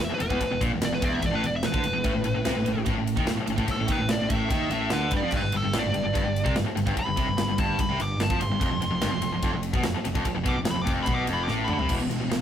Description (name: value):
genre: heavy metal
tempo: 146 BPM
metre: 4/4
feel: straight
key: E phrygian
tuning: A4 = 442 Hz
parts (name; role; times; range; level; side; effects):
- nasal lead guitar with a parked wah; melody; 0.0-11.9 s; A4 to D6; -30 LUFS; equal; overdrive
- heavy high-gain guitar; riff; 0.0-12.4 s; E2 to G3; -30 LUFS; left 6 dB; distortion
- high-gain distorted guitar; riff; 0.0-12.4 s; E2 to G3; -30 LUFS; right 5 dB; distortion
- fingered electric bass; bass; 0.0-12.4 s; E1 to G2; -31 LUFS; equal; none
- tight metal drum kit; drums; 0.2-12.4 s; crash cymbal, kick drum, ride cymbal, snare drum, toms; -29 LUFS; equal; none
room: moderate small room ambience, RT60 0.5 s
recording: rough rehearsal-room recording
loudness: -23 LUFS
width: side -9 dB against mid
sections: 0.0-11.9 A section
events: lead electric guitar solo 0.0-11.9; drum fill 11.5-11.9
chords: 0.0 E5; 2.0 A5; 5.3 G5; 8.6 F5; 11.9 E5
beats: 0.00 | 0.41 0.82 1.23 1.64 | 2.05 2.46 2.87 3.28 | 3.69 4.10 4.51 4.92 | 5.33 5.74 6.16 6.57 | 6.98 7.39 7.80 8.21 | 8.62 9.03 9.44 9.85 | 10.26 10.67 11.08 11.49 | 11.91 12.32